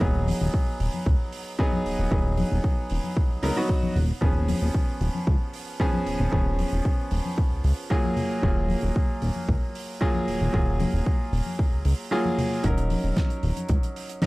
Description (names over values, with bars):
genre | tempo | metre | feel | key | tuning
nu-disco, nu disco | 114 BPM | 4/4 | straight | unclear | A4 = 438 Hz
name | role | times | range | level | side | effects
bright concert grand piano | accompaniment | 0.0-14.3 s | F3 to Bb4 | -28 LUFS | equal | analog delay
chorused synth bass | bass | 0.0-13.8 s | Eb1 to Db2 | -24 LUFS | equal | none
electronic kick drum | drums | 0.0-14.3 s | none | -24 LUFS | equal | studio reverb
damped 70s drum kit | drums | 0.3-14.3 s | hi-hat, snare drum | -38 LUFS | right 2 dB | studio reverb
congas | percussion | 0.3-13.7 s | none | -31 LUFS | left 2 dB | none
room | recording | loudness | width
small room ambience | dry, gritty hardware recording, faint mains hum | -22 LUFS | side -21 dB against mid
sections
0.0-14.3 A section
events
none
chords
0.0 Abm7/Eb; 4.0 Db7/Eb; 8.2 Gbmaj9/Eb; 12.6 Ebm7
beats
| 0.01 0.54 1.07 1.59 | 2.12 2.65 3.17 3.70 | 4.22 4.75 5.28 5.80 | 6.33 6.86 7.38 7.91 | 8.44 8.96 9.49 10.01 | 10.54 11.07 11.59 12.12 | 12.64 13.17 13.70 14.22